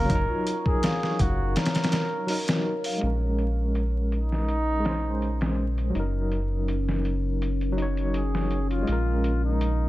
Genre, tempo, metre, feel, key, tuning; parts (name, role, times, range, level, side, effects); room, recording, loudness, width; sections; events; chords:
trip hop; 82 BPM; 4/4; swing 53% on 16ths; Bb minor; A4 = 440 Hz
trumpet with bucket mute; melody; 0.0-9.9 s; Eb4 to Bb4; -31 LUFS; equal; tape echo
overdriven tine electric piano; accompaniment; 0.0-9.9 s; Db3 to Db5; -30 LUFS; equal; tremolo, low-pass filter, tape echo
deep dark ambient pad; sustained chords; 0.0-9.9 s; Db4 to Db5; -36 LUFS; left 2 dB; chorus, built-in reverb
large celesta; arpeggios; 0.0-3.0 s; F4 to Bb5; -34 LUFS; left 2 dB; tape echo
round analog bass; bass; 0.0-9.9 s; Gb1 to Bb1; -26 LUFS; equal
trip hop sampler-style drum kit; drums; 0.1-9.8 s; hi-hat, kick drum, snare drum; -27 LUFS; equal; overdrive, low-pass filter on hats, vintage 12-bit sampler grit, studio reverb, low-pass filter on kick, low-pass filter on snare
little or no reverb; vinyl crackle; -23 LUFS; side -16 dB against mid
0.0-3.0 A section; 3.0-9.9 B section
filter sweep on tine electric piano 3.0-9.9; filter sweep on ambient pad 3.0-9.9
0.1 Gb6; 3.0 Bbm7; 5.9 Gb6; 8.9 Bbm7